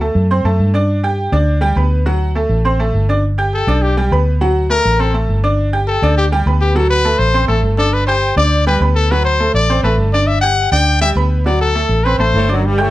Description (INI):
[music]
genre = latin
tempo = 204 BPM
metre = 4/4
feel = straight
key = G major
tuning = A4 = 443 Hz
[part]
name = bright upright piano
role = accompaniment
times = 0.0-12.9 s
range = F#3 to G6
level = -18 LUFS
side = right 1 dB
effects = none
[part]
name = vintage muted fingered electric bass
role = bass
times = 0.0-12.9 s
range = G1 to G2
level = -15 LUFS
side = equal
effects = none
[part]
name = bright trumpet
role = melody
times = 3.5-12.5 s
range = G4 to G5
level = -16 LUFS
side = left 3 dB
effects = none
[part]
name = brilliant trombone section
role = melody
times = 12.3-12.9 s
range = F#2 to A3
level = -17 LUFS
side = equal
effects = none
[sound]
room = light reverb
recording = none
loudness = -12 LUFS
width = side -16 dB against mid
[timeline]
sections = 0.0-3.2 A section; 3.2-12.6 B section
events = trumpet solo 3.2-12.6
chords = 0.0 D7; 0.9 G; 2.1 D7; 3.2 Gadd9; 4.4 D7; 5.6 Gadd9; 6.8 D7; 7.9 G; 9.1 D7; 10.3 G; 11.5 D7